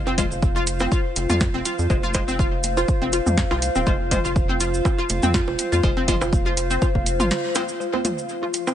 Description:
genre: minimal techno.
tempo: 122 BPM.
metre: 4/4.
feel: swing 54% on 16ths.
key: F minor.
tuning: A4 = 437 Hz.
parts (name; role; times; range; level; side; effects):
rubbery square bass; bass; 0.0-7.3 s; Eb1 to F2; -26 LUFS; equal; sidechain pumping.
warbly tape-like pad; texture; 0.0-8.7 s; F4 to F5; -26 LUFS; equal; chorus, built-in reverb, phaser, sidechain pumping.
hollow square pluck; riff; 0.1-8.7 s; C4 to F4; -27 LUFS; left 1 dB; ensemble chorus, sidechain pumping, tape echo.
electronic bongos, toms and congas; percussion; 0.1-8.7 s; none; -29 LUFS; equal; overdrive, tape echo.
wavetable chord stab; stabs; 0.2-8.1 s; Ab3 to C5; -30 LUFS; left 2 dB; tape echo.
booming analog drum machine; drums; 0.2-8.6 s; hi-hat, snare drum; -26 LUFS; equal; overdrive.
electronic kick drum; drums; 0.2-7.0 s; none; -22 LUFS; equal; overdrive.
cabasa; percussion; 0.2-8.7 s; none; -32 LUFS; right 4 dB; none.
swarming drone; texture; 8.3-8.7 s; F3 to F4; -40 LUFS; left 3 dB; none.
room: light reverb.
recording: nothing above 10.3 kHz.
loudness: -19 LUFS.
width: side -10 dB against mid.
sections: 0.0-7.8 A section.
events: drop 0.0-7.8; break 7.3-7.8; band accent 7.3.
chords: 0.0 F5.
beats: 0.42 0.92 1.41 | 1.90 2.39 2.88 3.38 | 3.87 4.36 4.85 5.34 | 5.83 6.33 6.82 7.31 | 7.80 8.29.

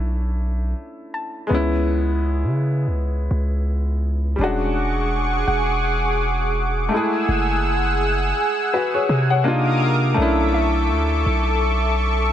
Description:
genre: contemporary R&B.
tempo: 83 BPM.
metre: 4/4.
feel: swing 58% on 16ths.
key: B dorian.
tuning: A4 = 441 Hz.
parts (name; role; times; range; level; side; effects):
clear concert grand piano; accompaniment; 0.0-12.3 s; G3 to F#5; -24 LUFS; left 2 dB; none.
long sustained 808-style bass; bass; 0.0-12.3 s; E1 to C#3; -21 LUFS; equal; none.
soft round pluck; texture; 0.0-12.3 s; E5 to A5; -30 LUFS; equal; chorus, digital delay.
lush unison pad; sustained chords; 4.4-12.3 s; G#4 to E6; -22 LUFS; right 1 dB; chorus.
room: little or no reverb.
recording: none.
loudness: -18 LUFS.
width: side -10 dB against mid.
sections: 0.0-10.2 A section; 10.2-12.3 B section.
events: none.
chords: 0.0 Bm11; 1.5 Amaj7/C#; 4.4 E13; 6.9 F#m9; 9.5 Cm11; 10.2 Bm11.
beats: 0.06 0.78 | 1.50 2.22 2.95 3.67 | 4.39 5.12 5.84 6.56 | 7.28 8.01 8.73 9.45 | 10.18 10.90 11.62.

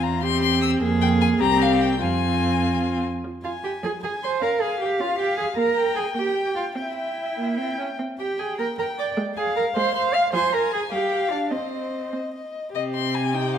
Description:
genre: quick classical-period movement for string quartet.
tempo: 96-106 BPM (dotted quarters).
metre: 6/8.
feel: rubato.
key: F minor, C minor from 8.0 s.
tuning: A4 = 440 Hz.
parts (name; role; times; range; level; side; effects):
rich violin; melody; 0.0-13.6 s; C5 to F6; -28 LUFS; left 9 dB; none.
dark violin; second line; 0.0-13.6 s; F4 to Ab5; -28 LUFS; left 5 dB; none.
warm viola; accompaniment; 0.0-13.6 s; F3 to Eb4; -26 LUFS; right 2 dB; none.
warm cello; bass; 0.0-13.6 s; C2 to F5; -25 LUFS; right 4 dB; none.
room: moderate recital hall reverb, RT60 1.4 s.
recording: none.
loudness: -21 LUFS.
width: side -9 dB against mid.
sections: 0.0-3.2 A section; 3.2-12.8 A section.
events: none.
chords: 0.0 C/E; 0.8 Fm; 1.4 C5; 2.0 Fm; 4.4 Db; 5.6 Gm/Bb; 6.8 C; 8.0 C5; 8.6 Gm/Bb; 9.2 Fm/Ab; 10.3 Fm; 10.9 G5; 11.5 Cm.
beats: 0.23 | 0.81 1.40 | 2.02 2.64 | 3.25 3.84 | 4.42 5.00 | 5.57 6.15 | 6.75 7.37 | 7.99 8.58 | 9.17 9.76 | 10.34 10.92 | 11.52 12.13 | 12.75 13.34.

